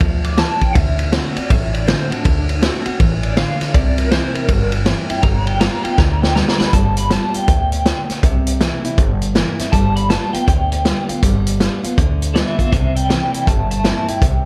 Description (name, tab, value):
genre	rockabilly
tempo	160 BPM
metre	4/4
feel	swing 63% on 8ths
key	G mixolydian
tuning	A4 = 440 Hz
part	picked steel-string acoustic guitar	accompaniment	0.0-14.5 s	G2 to F#4	-24 LUFS	equal	none
part	upright bass	bass	0.0-14.5 s	G1 to D2	-22 LUFS	equal	none
part	vintage drum kit	drums	0.0-14.3 s	hi-hat, kick drum, ride cymbal, snare drum	-20 LUFS	equal	none
part	electric guitar through a small old amp	melody	0.2-14.5 s	D4 to D6	-25 LUFS	equal	tremolo, tape echo
room	light reverb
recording	none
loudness	-17 LUFS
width	mono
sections	0.0-6.7 A section; 6.7-14.5 B section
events	clean electric guitar solo 0.0-6.7; drum fill 6.0-6.7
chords	0.0 G7(no3) (rootless); 0.8 D7; 3.7 C7; 5.2 G7; 8.2 C7; 9.7 G7; 12.7 C7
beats	0.01 0.38 | 0.76 1.13 1.50 1.88 | 2.25 2.62 3.00 3.37 | 3.74 4.12 4.49 4.87 | 5.24 5.61 5.99 6.36 | 6.73 7.11 7.48 7.86 | 8.23 8.60 8.98 9.35 | 9.73 10.10 10.48 10.85 | 11.22 11.60 11.97 12.35 | 12.72 13.10 13.47 13.84 | 14.22